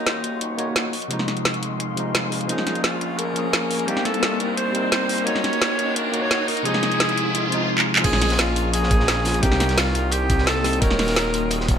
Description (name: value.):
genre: liquid drum and bass.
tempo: 173 BPM.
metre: 4/4.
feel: straight.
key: Bb minor.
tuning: A4 = 440 Hz.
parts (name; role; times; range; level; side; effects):
bright alto saxophone; melody; 0.0-11.8 s; Eb4 to Db5; -26 LUFS; equal; ping-pong delay.
bell-like tine electric piano; accompaniment; 0.0-11.8 s; C3 to Db5; -26 LUFS; equal; ping-pong delay.
glassy FM pad; sustained chords; 0.0-11.8 s; Bb3 to Eb6; -30 LUFS; left 3 dB; ensemble chorus, built-in reverb.
swelling detuned saw bass; bass; 0.0-11.8 s; Eb1 to C2; -28 LUFS; equal; high-pass filter.
riser; sound effects; 0.4-7.7 s; none; -29 LUFS; equal; none.
drum and bass drum kit; drums; 0.1-11.8 s; crash cymbal, handclaps, hi-hat, snare drum; -23 LUFS; equal; none.
electronic kick drum; drums; 8.0-11.8 s; none; -21 LUFS; equal; none.
crunchy breakbeat drum kit; drums; 8.1-11.8 s; hi-hat, snare drum; -30 LUFS; equal; high-pass filter on hats, high-pass filter on snare, high-pass filter on room.
room: light reverb, small room ambience.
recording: none.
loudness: -19 LUFS.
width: side -8 dB against mid.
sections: 0.0-8.0 A section; 8.0-11.8 B section.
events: build-up 0.0-8.0; filter sweep on ambient pad 0.0-8.0; riser 0.4-7.7; drum fill 7.8; drop 8.0-11.8.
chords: 0.0 Ebm7; 0.9 Fm7; 2.5 Bbm7; 3.9 Cm7; 5.3 Ebm7; 6.5 Fm7; 8.0 Bbm7; 9.4 Cm7; 10.8 Ebm7.